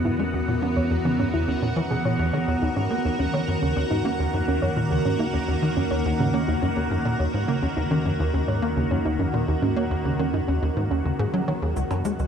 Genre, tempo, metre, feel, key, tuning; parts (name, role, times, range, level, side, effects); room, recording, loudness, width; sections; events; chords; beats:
ambient, sequencer-driven space music; 105 BPM; 4/4; straight; A4 = 442 Hz
evolving wavetable pad; sustained chords; 0.0-12.3 s; D#3 to A#4; -26 LUFS; equal; ensemble chorus, built-in reverb, phaser
soft round pluck; arpeggios; 0.0-11.6 s; C#3 to C#5; -29 LUFS; right 2 dB; chorus, auto-pan, tape echo
tight sequencer bass; riff; 0.0-12.2 s; C#2 to B3; -25 LUFS; equal; analog chorus, tape echo
analog drone; bass; 0.0-12.3 s; D#2 to E2; -35 LUFS; equal
bubbling stepped-filter texture; texture; 0.0-11.8 s; F#5; -35 LUFS; left 1 dB; chorus, built-in reverb
cabasa and percussion blips; percussion; 11.8-12.3 s; -38 LUFS; right 1 dB; tape echo
wet cathedral reverb, RT60 7.2 s; dreamy mix soaked in reverb, cassette tape; -21 LUFS; side -7 dB against mid
0.0-11.8 A section
0.0 Esus2; 2.6 D#m; 11.8 C#m
| 0.34 0.91 1.48 2.05 | 2.62 3.19 3.76 4.34 | 4.91 5.48 6.05 6.62 | 7.19 7.76 8.34 8.91 | 9.48 10.05 10.62 11.19 | 11.76